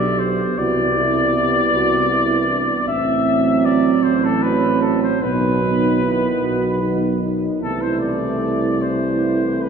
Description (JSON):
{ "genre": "classical, hymn-like piece for brass band", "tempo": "51 BPM (dotted quarters)", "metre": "12/8", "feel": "rubato", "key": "unclear", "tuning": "A4 = 440 Hz", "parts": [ { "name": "warm flugelhorn", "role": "melody", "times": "0.0-9.7 s", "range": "A4 to E5", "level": "-21 LUFS", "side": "left 2 dB", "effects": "none" }, { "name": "mellow French horn section", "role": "second line", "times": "0.0-9.7 s", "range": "A3 to C4", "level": "-25 LUFS", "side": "right 7 dB", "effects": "none" }, { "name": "mellow euphonium", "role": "accompaniment", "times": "0.0-9.7 s", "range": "B3 to G4", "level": "-22 LUFS", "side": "right 2 dB", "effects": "none" }, { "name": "warm trombone", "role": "accompaniment", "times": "0.0-9.7 s", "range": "D3 to F#3", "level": "-26 LUFS", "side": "right 4 dB", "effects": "none" }, { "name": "mellow tuba", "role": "bass", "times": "0.0-9.7 s", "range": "A1 to C2", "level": "-22 LUFS", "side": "equal", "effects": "none" } ], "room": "wet church reverb, RT60 3.2 s", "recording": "recorded in a church or concert hall, small room ambience", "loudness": "-16 LUFS", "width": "side -6 dB against mid", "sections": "0.0-9.7 A section", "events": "none", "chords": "0.0 G/B; 0.6 Cmaj7; 2.9 F#dim/A; 5.2 B; 7.6 Am/C" }